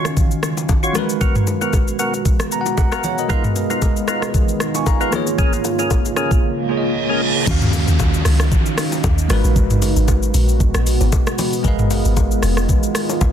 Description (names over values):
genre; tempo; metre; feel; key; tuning
amapiano; 115 BPM; 4/4; swing 55% on 16ths; unclear; A4 = 440 Hz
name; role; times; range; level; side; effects
bell-like tine electric piano; accompaniment; 0.0-13.3 s; Eb3 to Db6; -23 LUFS; right 1 dB; medium stereo tremolo
deep dark ambient pad; sustained chords; 0.0-13.3 s; Ab2 to F5; -24 LUFS; right 1 dB; chorus, built-in reverb, sidechain pumping
percussive tonewheel organ; stabs; 0.0-7.2 s; Cb4 to Db5; -24 LUFS; left 1 dB; overdrive, slow rotary speaker, tape echo
smooth R&B drum kit; drums; 0.1-13.3 s; crash cymbal, hi-hat, kick drum, rim click, shaker, toms; -18 LUFS; equal; soft clipping on snare
congas and bongos; percussion; 0.2-13.3 s; none; -29 LUFS; left 5 dB; none
reverse cymbal and downlifter; sound effects; 6.7-11.6 s; none; -25 LUFS; right 3 dB; none
deep log drum bass; bass; 7.5-13.3 s; F1 to Eb2; -17 LUFS; equal; none
room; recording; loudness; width
digital ambience; dense, heavily limited modern master; -15 LUFS; side -9 dB against mid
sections
0.0-7.5 A section; 7.5-13.3 B section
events
tine electric piano fill 2.3-3.3; reverse cymbal 6.7-7.5; drop 7.5-13.3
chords
0.0 Ebm9; 1.0 Abm9; 3.3 Abm69; 5.1 Bbm7; 7.5 Ebm9; 9.3 Abm9; 11.6 Abm69